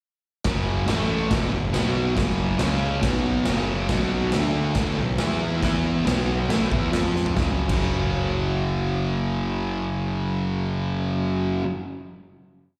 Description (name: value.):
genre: garage rock duo or trio.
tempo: 139 BPM.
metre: 4/4.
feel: straight.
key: F# minor.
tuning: A4 = 441 Hz.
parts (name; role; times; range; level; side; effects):
fuzz guitar; riff; 0.4-11.7 s; E2 to F4; -26 LUFS; equal; distortion, slapback echo.
raw garage drum kit; drums; 0.4-7.8 s; crash cymbal, kick drum, snare drum, toms; -29 LUFS; equal; none.
fuzz picked electric bass; bass; 0.5-11.6 s; E1 to F2; -29 LUFS; equal; overdrive, tube saturation.
room: light reverb.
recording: live gig heard through the venue's PA, recital hall reverb.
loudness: -24 LUFS.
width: mono.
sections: 0.5-7.4 riff; 7.4-10.8 final chord.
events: drum fill 7.2.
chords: 0.5 F#5; 0.9 A5; 1.3 F#5; 1.7 B5; 2.2 F#5; 2.6 C#5; 3.0 B5; 3.5 F#5; 3.9 B5; 4.3 D5; 4.8 B5; 5.2 E5; 6.1 B5; 6.9 F5; 7.4 F#5.